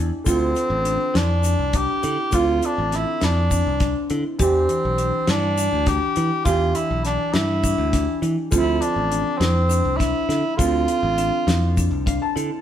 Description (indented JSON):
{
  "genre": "progressive instrumental, band music in an uneven meter",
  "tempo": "203 BPM (eighths)",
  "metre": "7/8",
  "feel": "straight",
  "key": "unclear",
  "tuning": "A4 = 436 Hz",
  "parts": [
    { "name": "warm grand piano", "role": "accompaniment", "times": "0.0-12.6 s", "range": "D3 to A5", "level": "-29 LUFS", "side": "equal", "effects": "none" },
    { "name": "marimba with soft mallets", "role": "arpeggios", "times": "0.0-12.6 s", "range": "D4 to G4", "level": "-25 LUFS", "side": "right 1 dB", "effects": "none" },
    { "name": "modern bright picked electric bass", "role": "bass", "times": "0.0-12.5 s", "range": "A1 to E3", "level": "-23 LUFS", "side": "equal", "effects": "none" },
    { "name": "warm tenor saxophone", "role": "melody", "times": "0.3-12.0 s", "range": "C4 to G4", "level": "-23 LUFS", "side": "equal", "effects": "none" },
    { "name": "damped 70s drum kit", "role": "drums", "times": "0.3-12.5 s", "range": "hi-hat, kick drum, snare drum", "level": "-25 LUFS", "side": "left 1 dB", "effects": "none" },
    { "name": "egg shaker", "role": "percussion", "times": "0.3-12.5 s", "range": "none", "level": "-36 LUFS", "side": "left 6 dB", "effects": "none" }
  ],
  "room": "moderate stone room reverb, RT60 1.0 s",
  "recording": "band playing live in one room",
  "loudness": "-18 LUFS",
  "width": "side -10 dB against mid",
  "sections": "0.0-12.6 A section",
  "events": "grand piano fill 11.8-12.6",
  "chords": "0.3 Dm7; 4.4 Em7; 8.5 Dm7",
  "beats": "| 0.26 0.55 0.85 1.14 1.44 1.73 2.03 | 2.32 2.62 2.91 3.21 3.50 3.80 4.09 | 4.39 4.68 4.98 5.27 5.57 5.86 6.16 | 6.45 6.75 7.04 7.34 7.63 7.93 8.23 | 8.52 8.82 9.11 9.41 9.70 10.00 10.29 | 10.59 10.89 11.18 11.48 11.77 12.07 12.37"
}